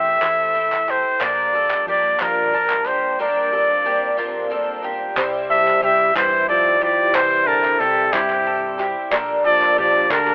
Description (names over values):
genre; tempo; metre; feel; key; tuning
indie folk with a building arrangement; 61 BPM (dotted quarters); 6/8; straight; C mixolydian; A4 = 440 Hz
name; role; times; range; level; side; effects
warm trumpet; melody; 0.0-10.3 s; G4 to E5; -16 LUFS; equal; cassette tape
picked twelve-string acoustic guitar; accompaniment; 0.0-10.3 s; Bb2 to A4; -25 LUFS; equal; lush chorus
warm studio string section; sustained chords; 0.0-10.3 s; C3 to A5; -34 LUFS; equal; none
bowl-back mandolin; arpeggios; 0.0-10.3 s; D4 to A5; -27 LUFS; right 1 dB; none
hollow-body short-scale fingered electric bass; bass; 0.0-10.3 s; Bb1 to G2; -41 LUFS; equal; none
group handclap; percussion; 0.2-10.3 s; none; -24 LUFS; right 1 dB; none
mellow French horn; second line; 5.5-10.3 s; C3 to G3; -27 LUFS; right 1 dB; none
room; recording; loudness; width
light reverb; home recording on cassette, telephone sound; -15 LUFS; side -31 dB against mid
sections
0.0-5.2 A section; 5.2-10.3 B section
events
none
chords
0.0 Am; 1.2 Bb6; 5.2 C; 9.1 Gmadd9/Bb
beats
0.23 | 1.22 2.21 | 3.20 4.19 | 5.17 6.16 | 7.15 8.14 | 9.13 10.12